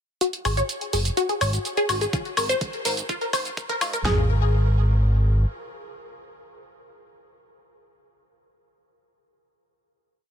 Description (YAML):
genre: progressive house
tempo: 125 BPM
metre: 4/4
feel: straight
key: Ab mixolydian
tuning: A4 = 440 Hz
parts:
  - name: wide unison pluck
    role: arpeggios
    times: 0.2-4.3 s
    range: F4 to Db5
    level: -26 LUFS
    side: left 1 dB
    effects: sidechain pumping, ping-pong delay
  - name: electronic hi-hat, shaker and woodblock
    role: drums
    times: 0.2-4.0 s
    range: none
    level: -28 LUFS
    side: left 2 dB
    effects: overdrive
  - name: fat analog bass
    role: bass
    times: 0.5-5.5 s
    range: Gb1 to Ab2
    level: -21 LUFS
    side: equal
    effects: sidechain pumping
  - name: pop drum kit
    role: drums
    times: 2.1-4.2 s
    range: kick drum, snare drum, toms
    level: -28 LUFS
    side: right 1 dB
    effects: overdrive
room: light reverb, digital ambience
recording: dense, heavily limited modern master, high-pass filter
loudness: -21 LUFS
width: side -8 dB against mid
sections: 0.2-4.1 build; 4.1-7.9 final chord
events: build-up 0.2-4.1; filter sweep on synth pluck 0.2-4.1; drum fill 2.1-4.1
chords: 0.2 Ab7(no3); 2.1 N.C.